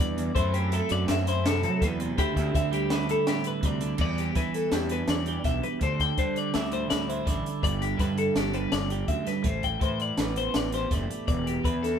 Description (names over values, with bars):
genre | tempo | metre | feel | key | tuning
math rock and midwest emo | 165 BPM | 5/4 | straight | E minor | A4 = 440 Hz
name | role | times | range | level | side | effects
twelve-string electric guitar | accompaniment | 0.0-12.0 s | E2 to G4 | -30 LUFS | right 5 dB | spring reverb
twelve-string electric guitar | arpeggios | 0.0-12.0 s | G4 to G5 | -30 LUFS | left 4 dB | none
fuzz fingered electric bass | bass | 0.0-11.9 s | E1 to F#3 | -31 LUFS | equal | overdrive
compact cocktail drum kit | drums | 0.2-11.9 s | crash cymbal, hi-hat, kick drum, snare drum | -29 LUFS | equal | none
room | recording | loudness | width
light reverb | band playing live in one room | -24 LUFS | side -8 dB against mid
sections
0.0-4.0 A section; 4.0-12.0 B section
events
none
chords
0.4 F#m7b5; 2.2 D9sus4; 4.0 Em7; 5.8 D9sus4; 7.6 G6; 9.5 Am9; 11.3 Em7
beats
0.00 | 0.36 0.73 1.09 1.45 1.82 | 2.18 2.54 2.91 3.27 3.63 | 4.00 4.36 4.72 5.09 5.45 | 5.82 6.18 6.54 6.91 7.27 | 7.64 8.00 8.37 8.73 9.10 | 9.46 9.82 10.19 10.55 10.92 | 11.28 11.65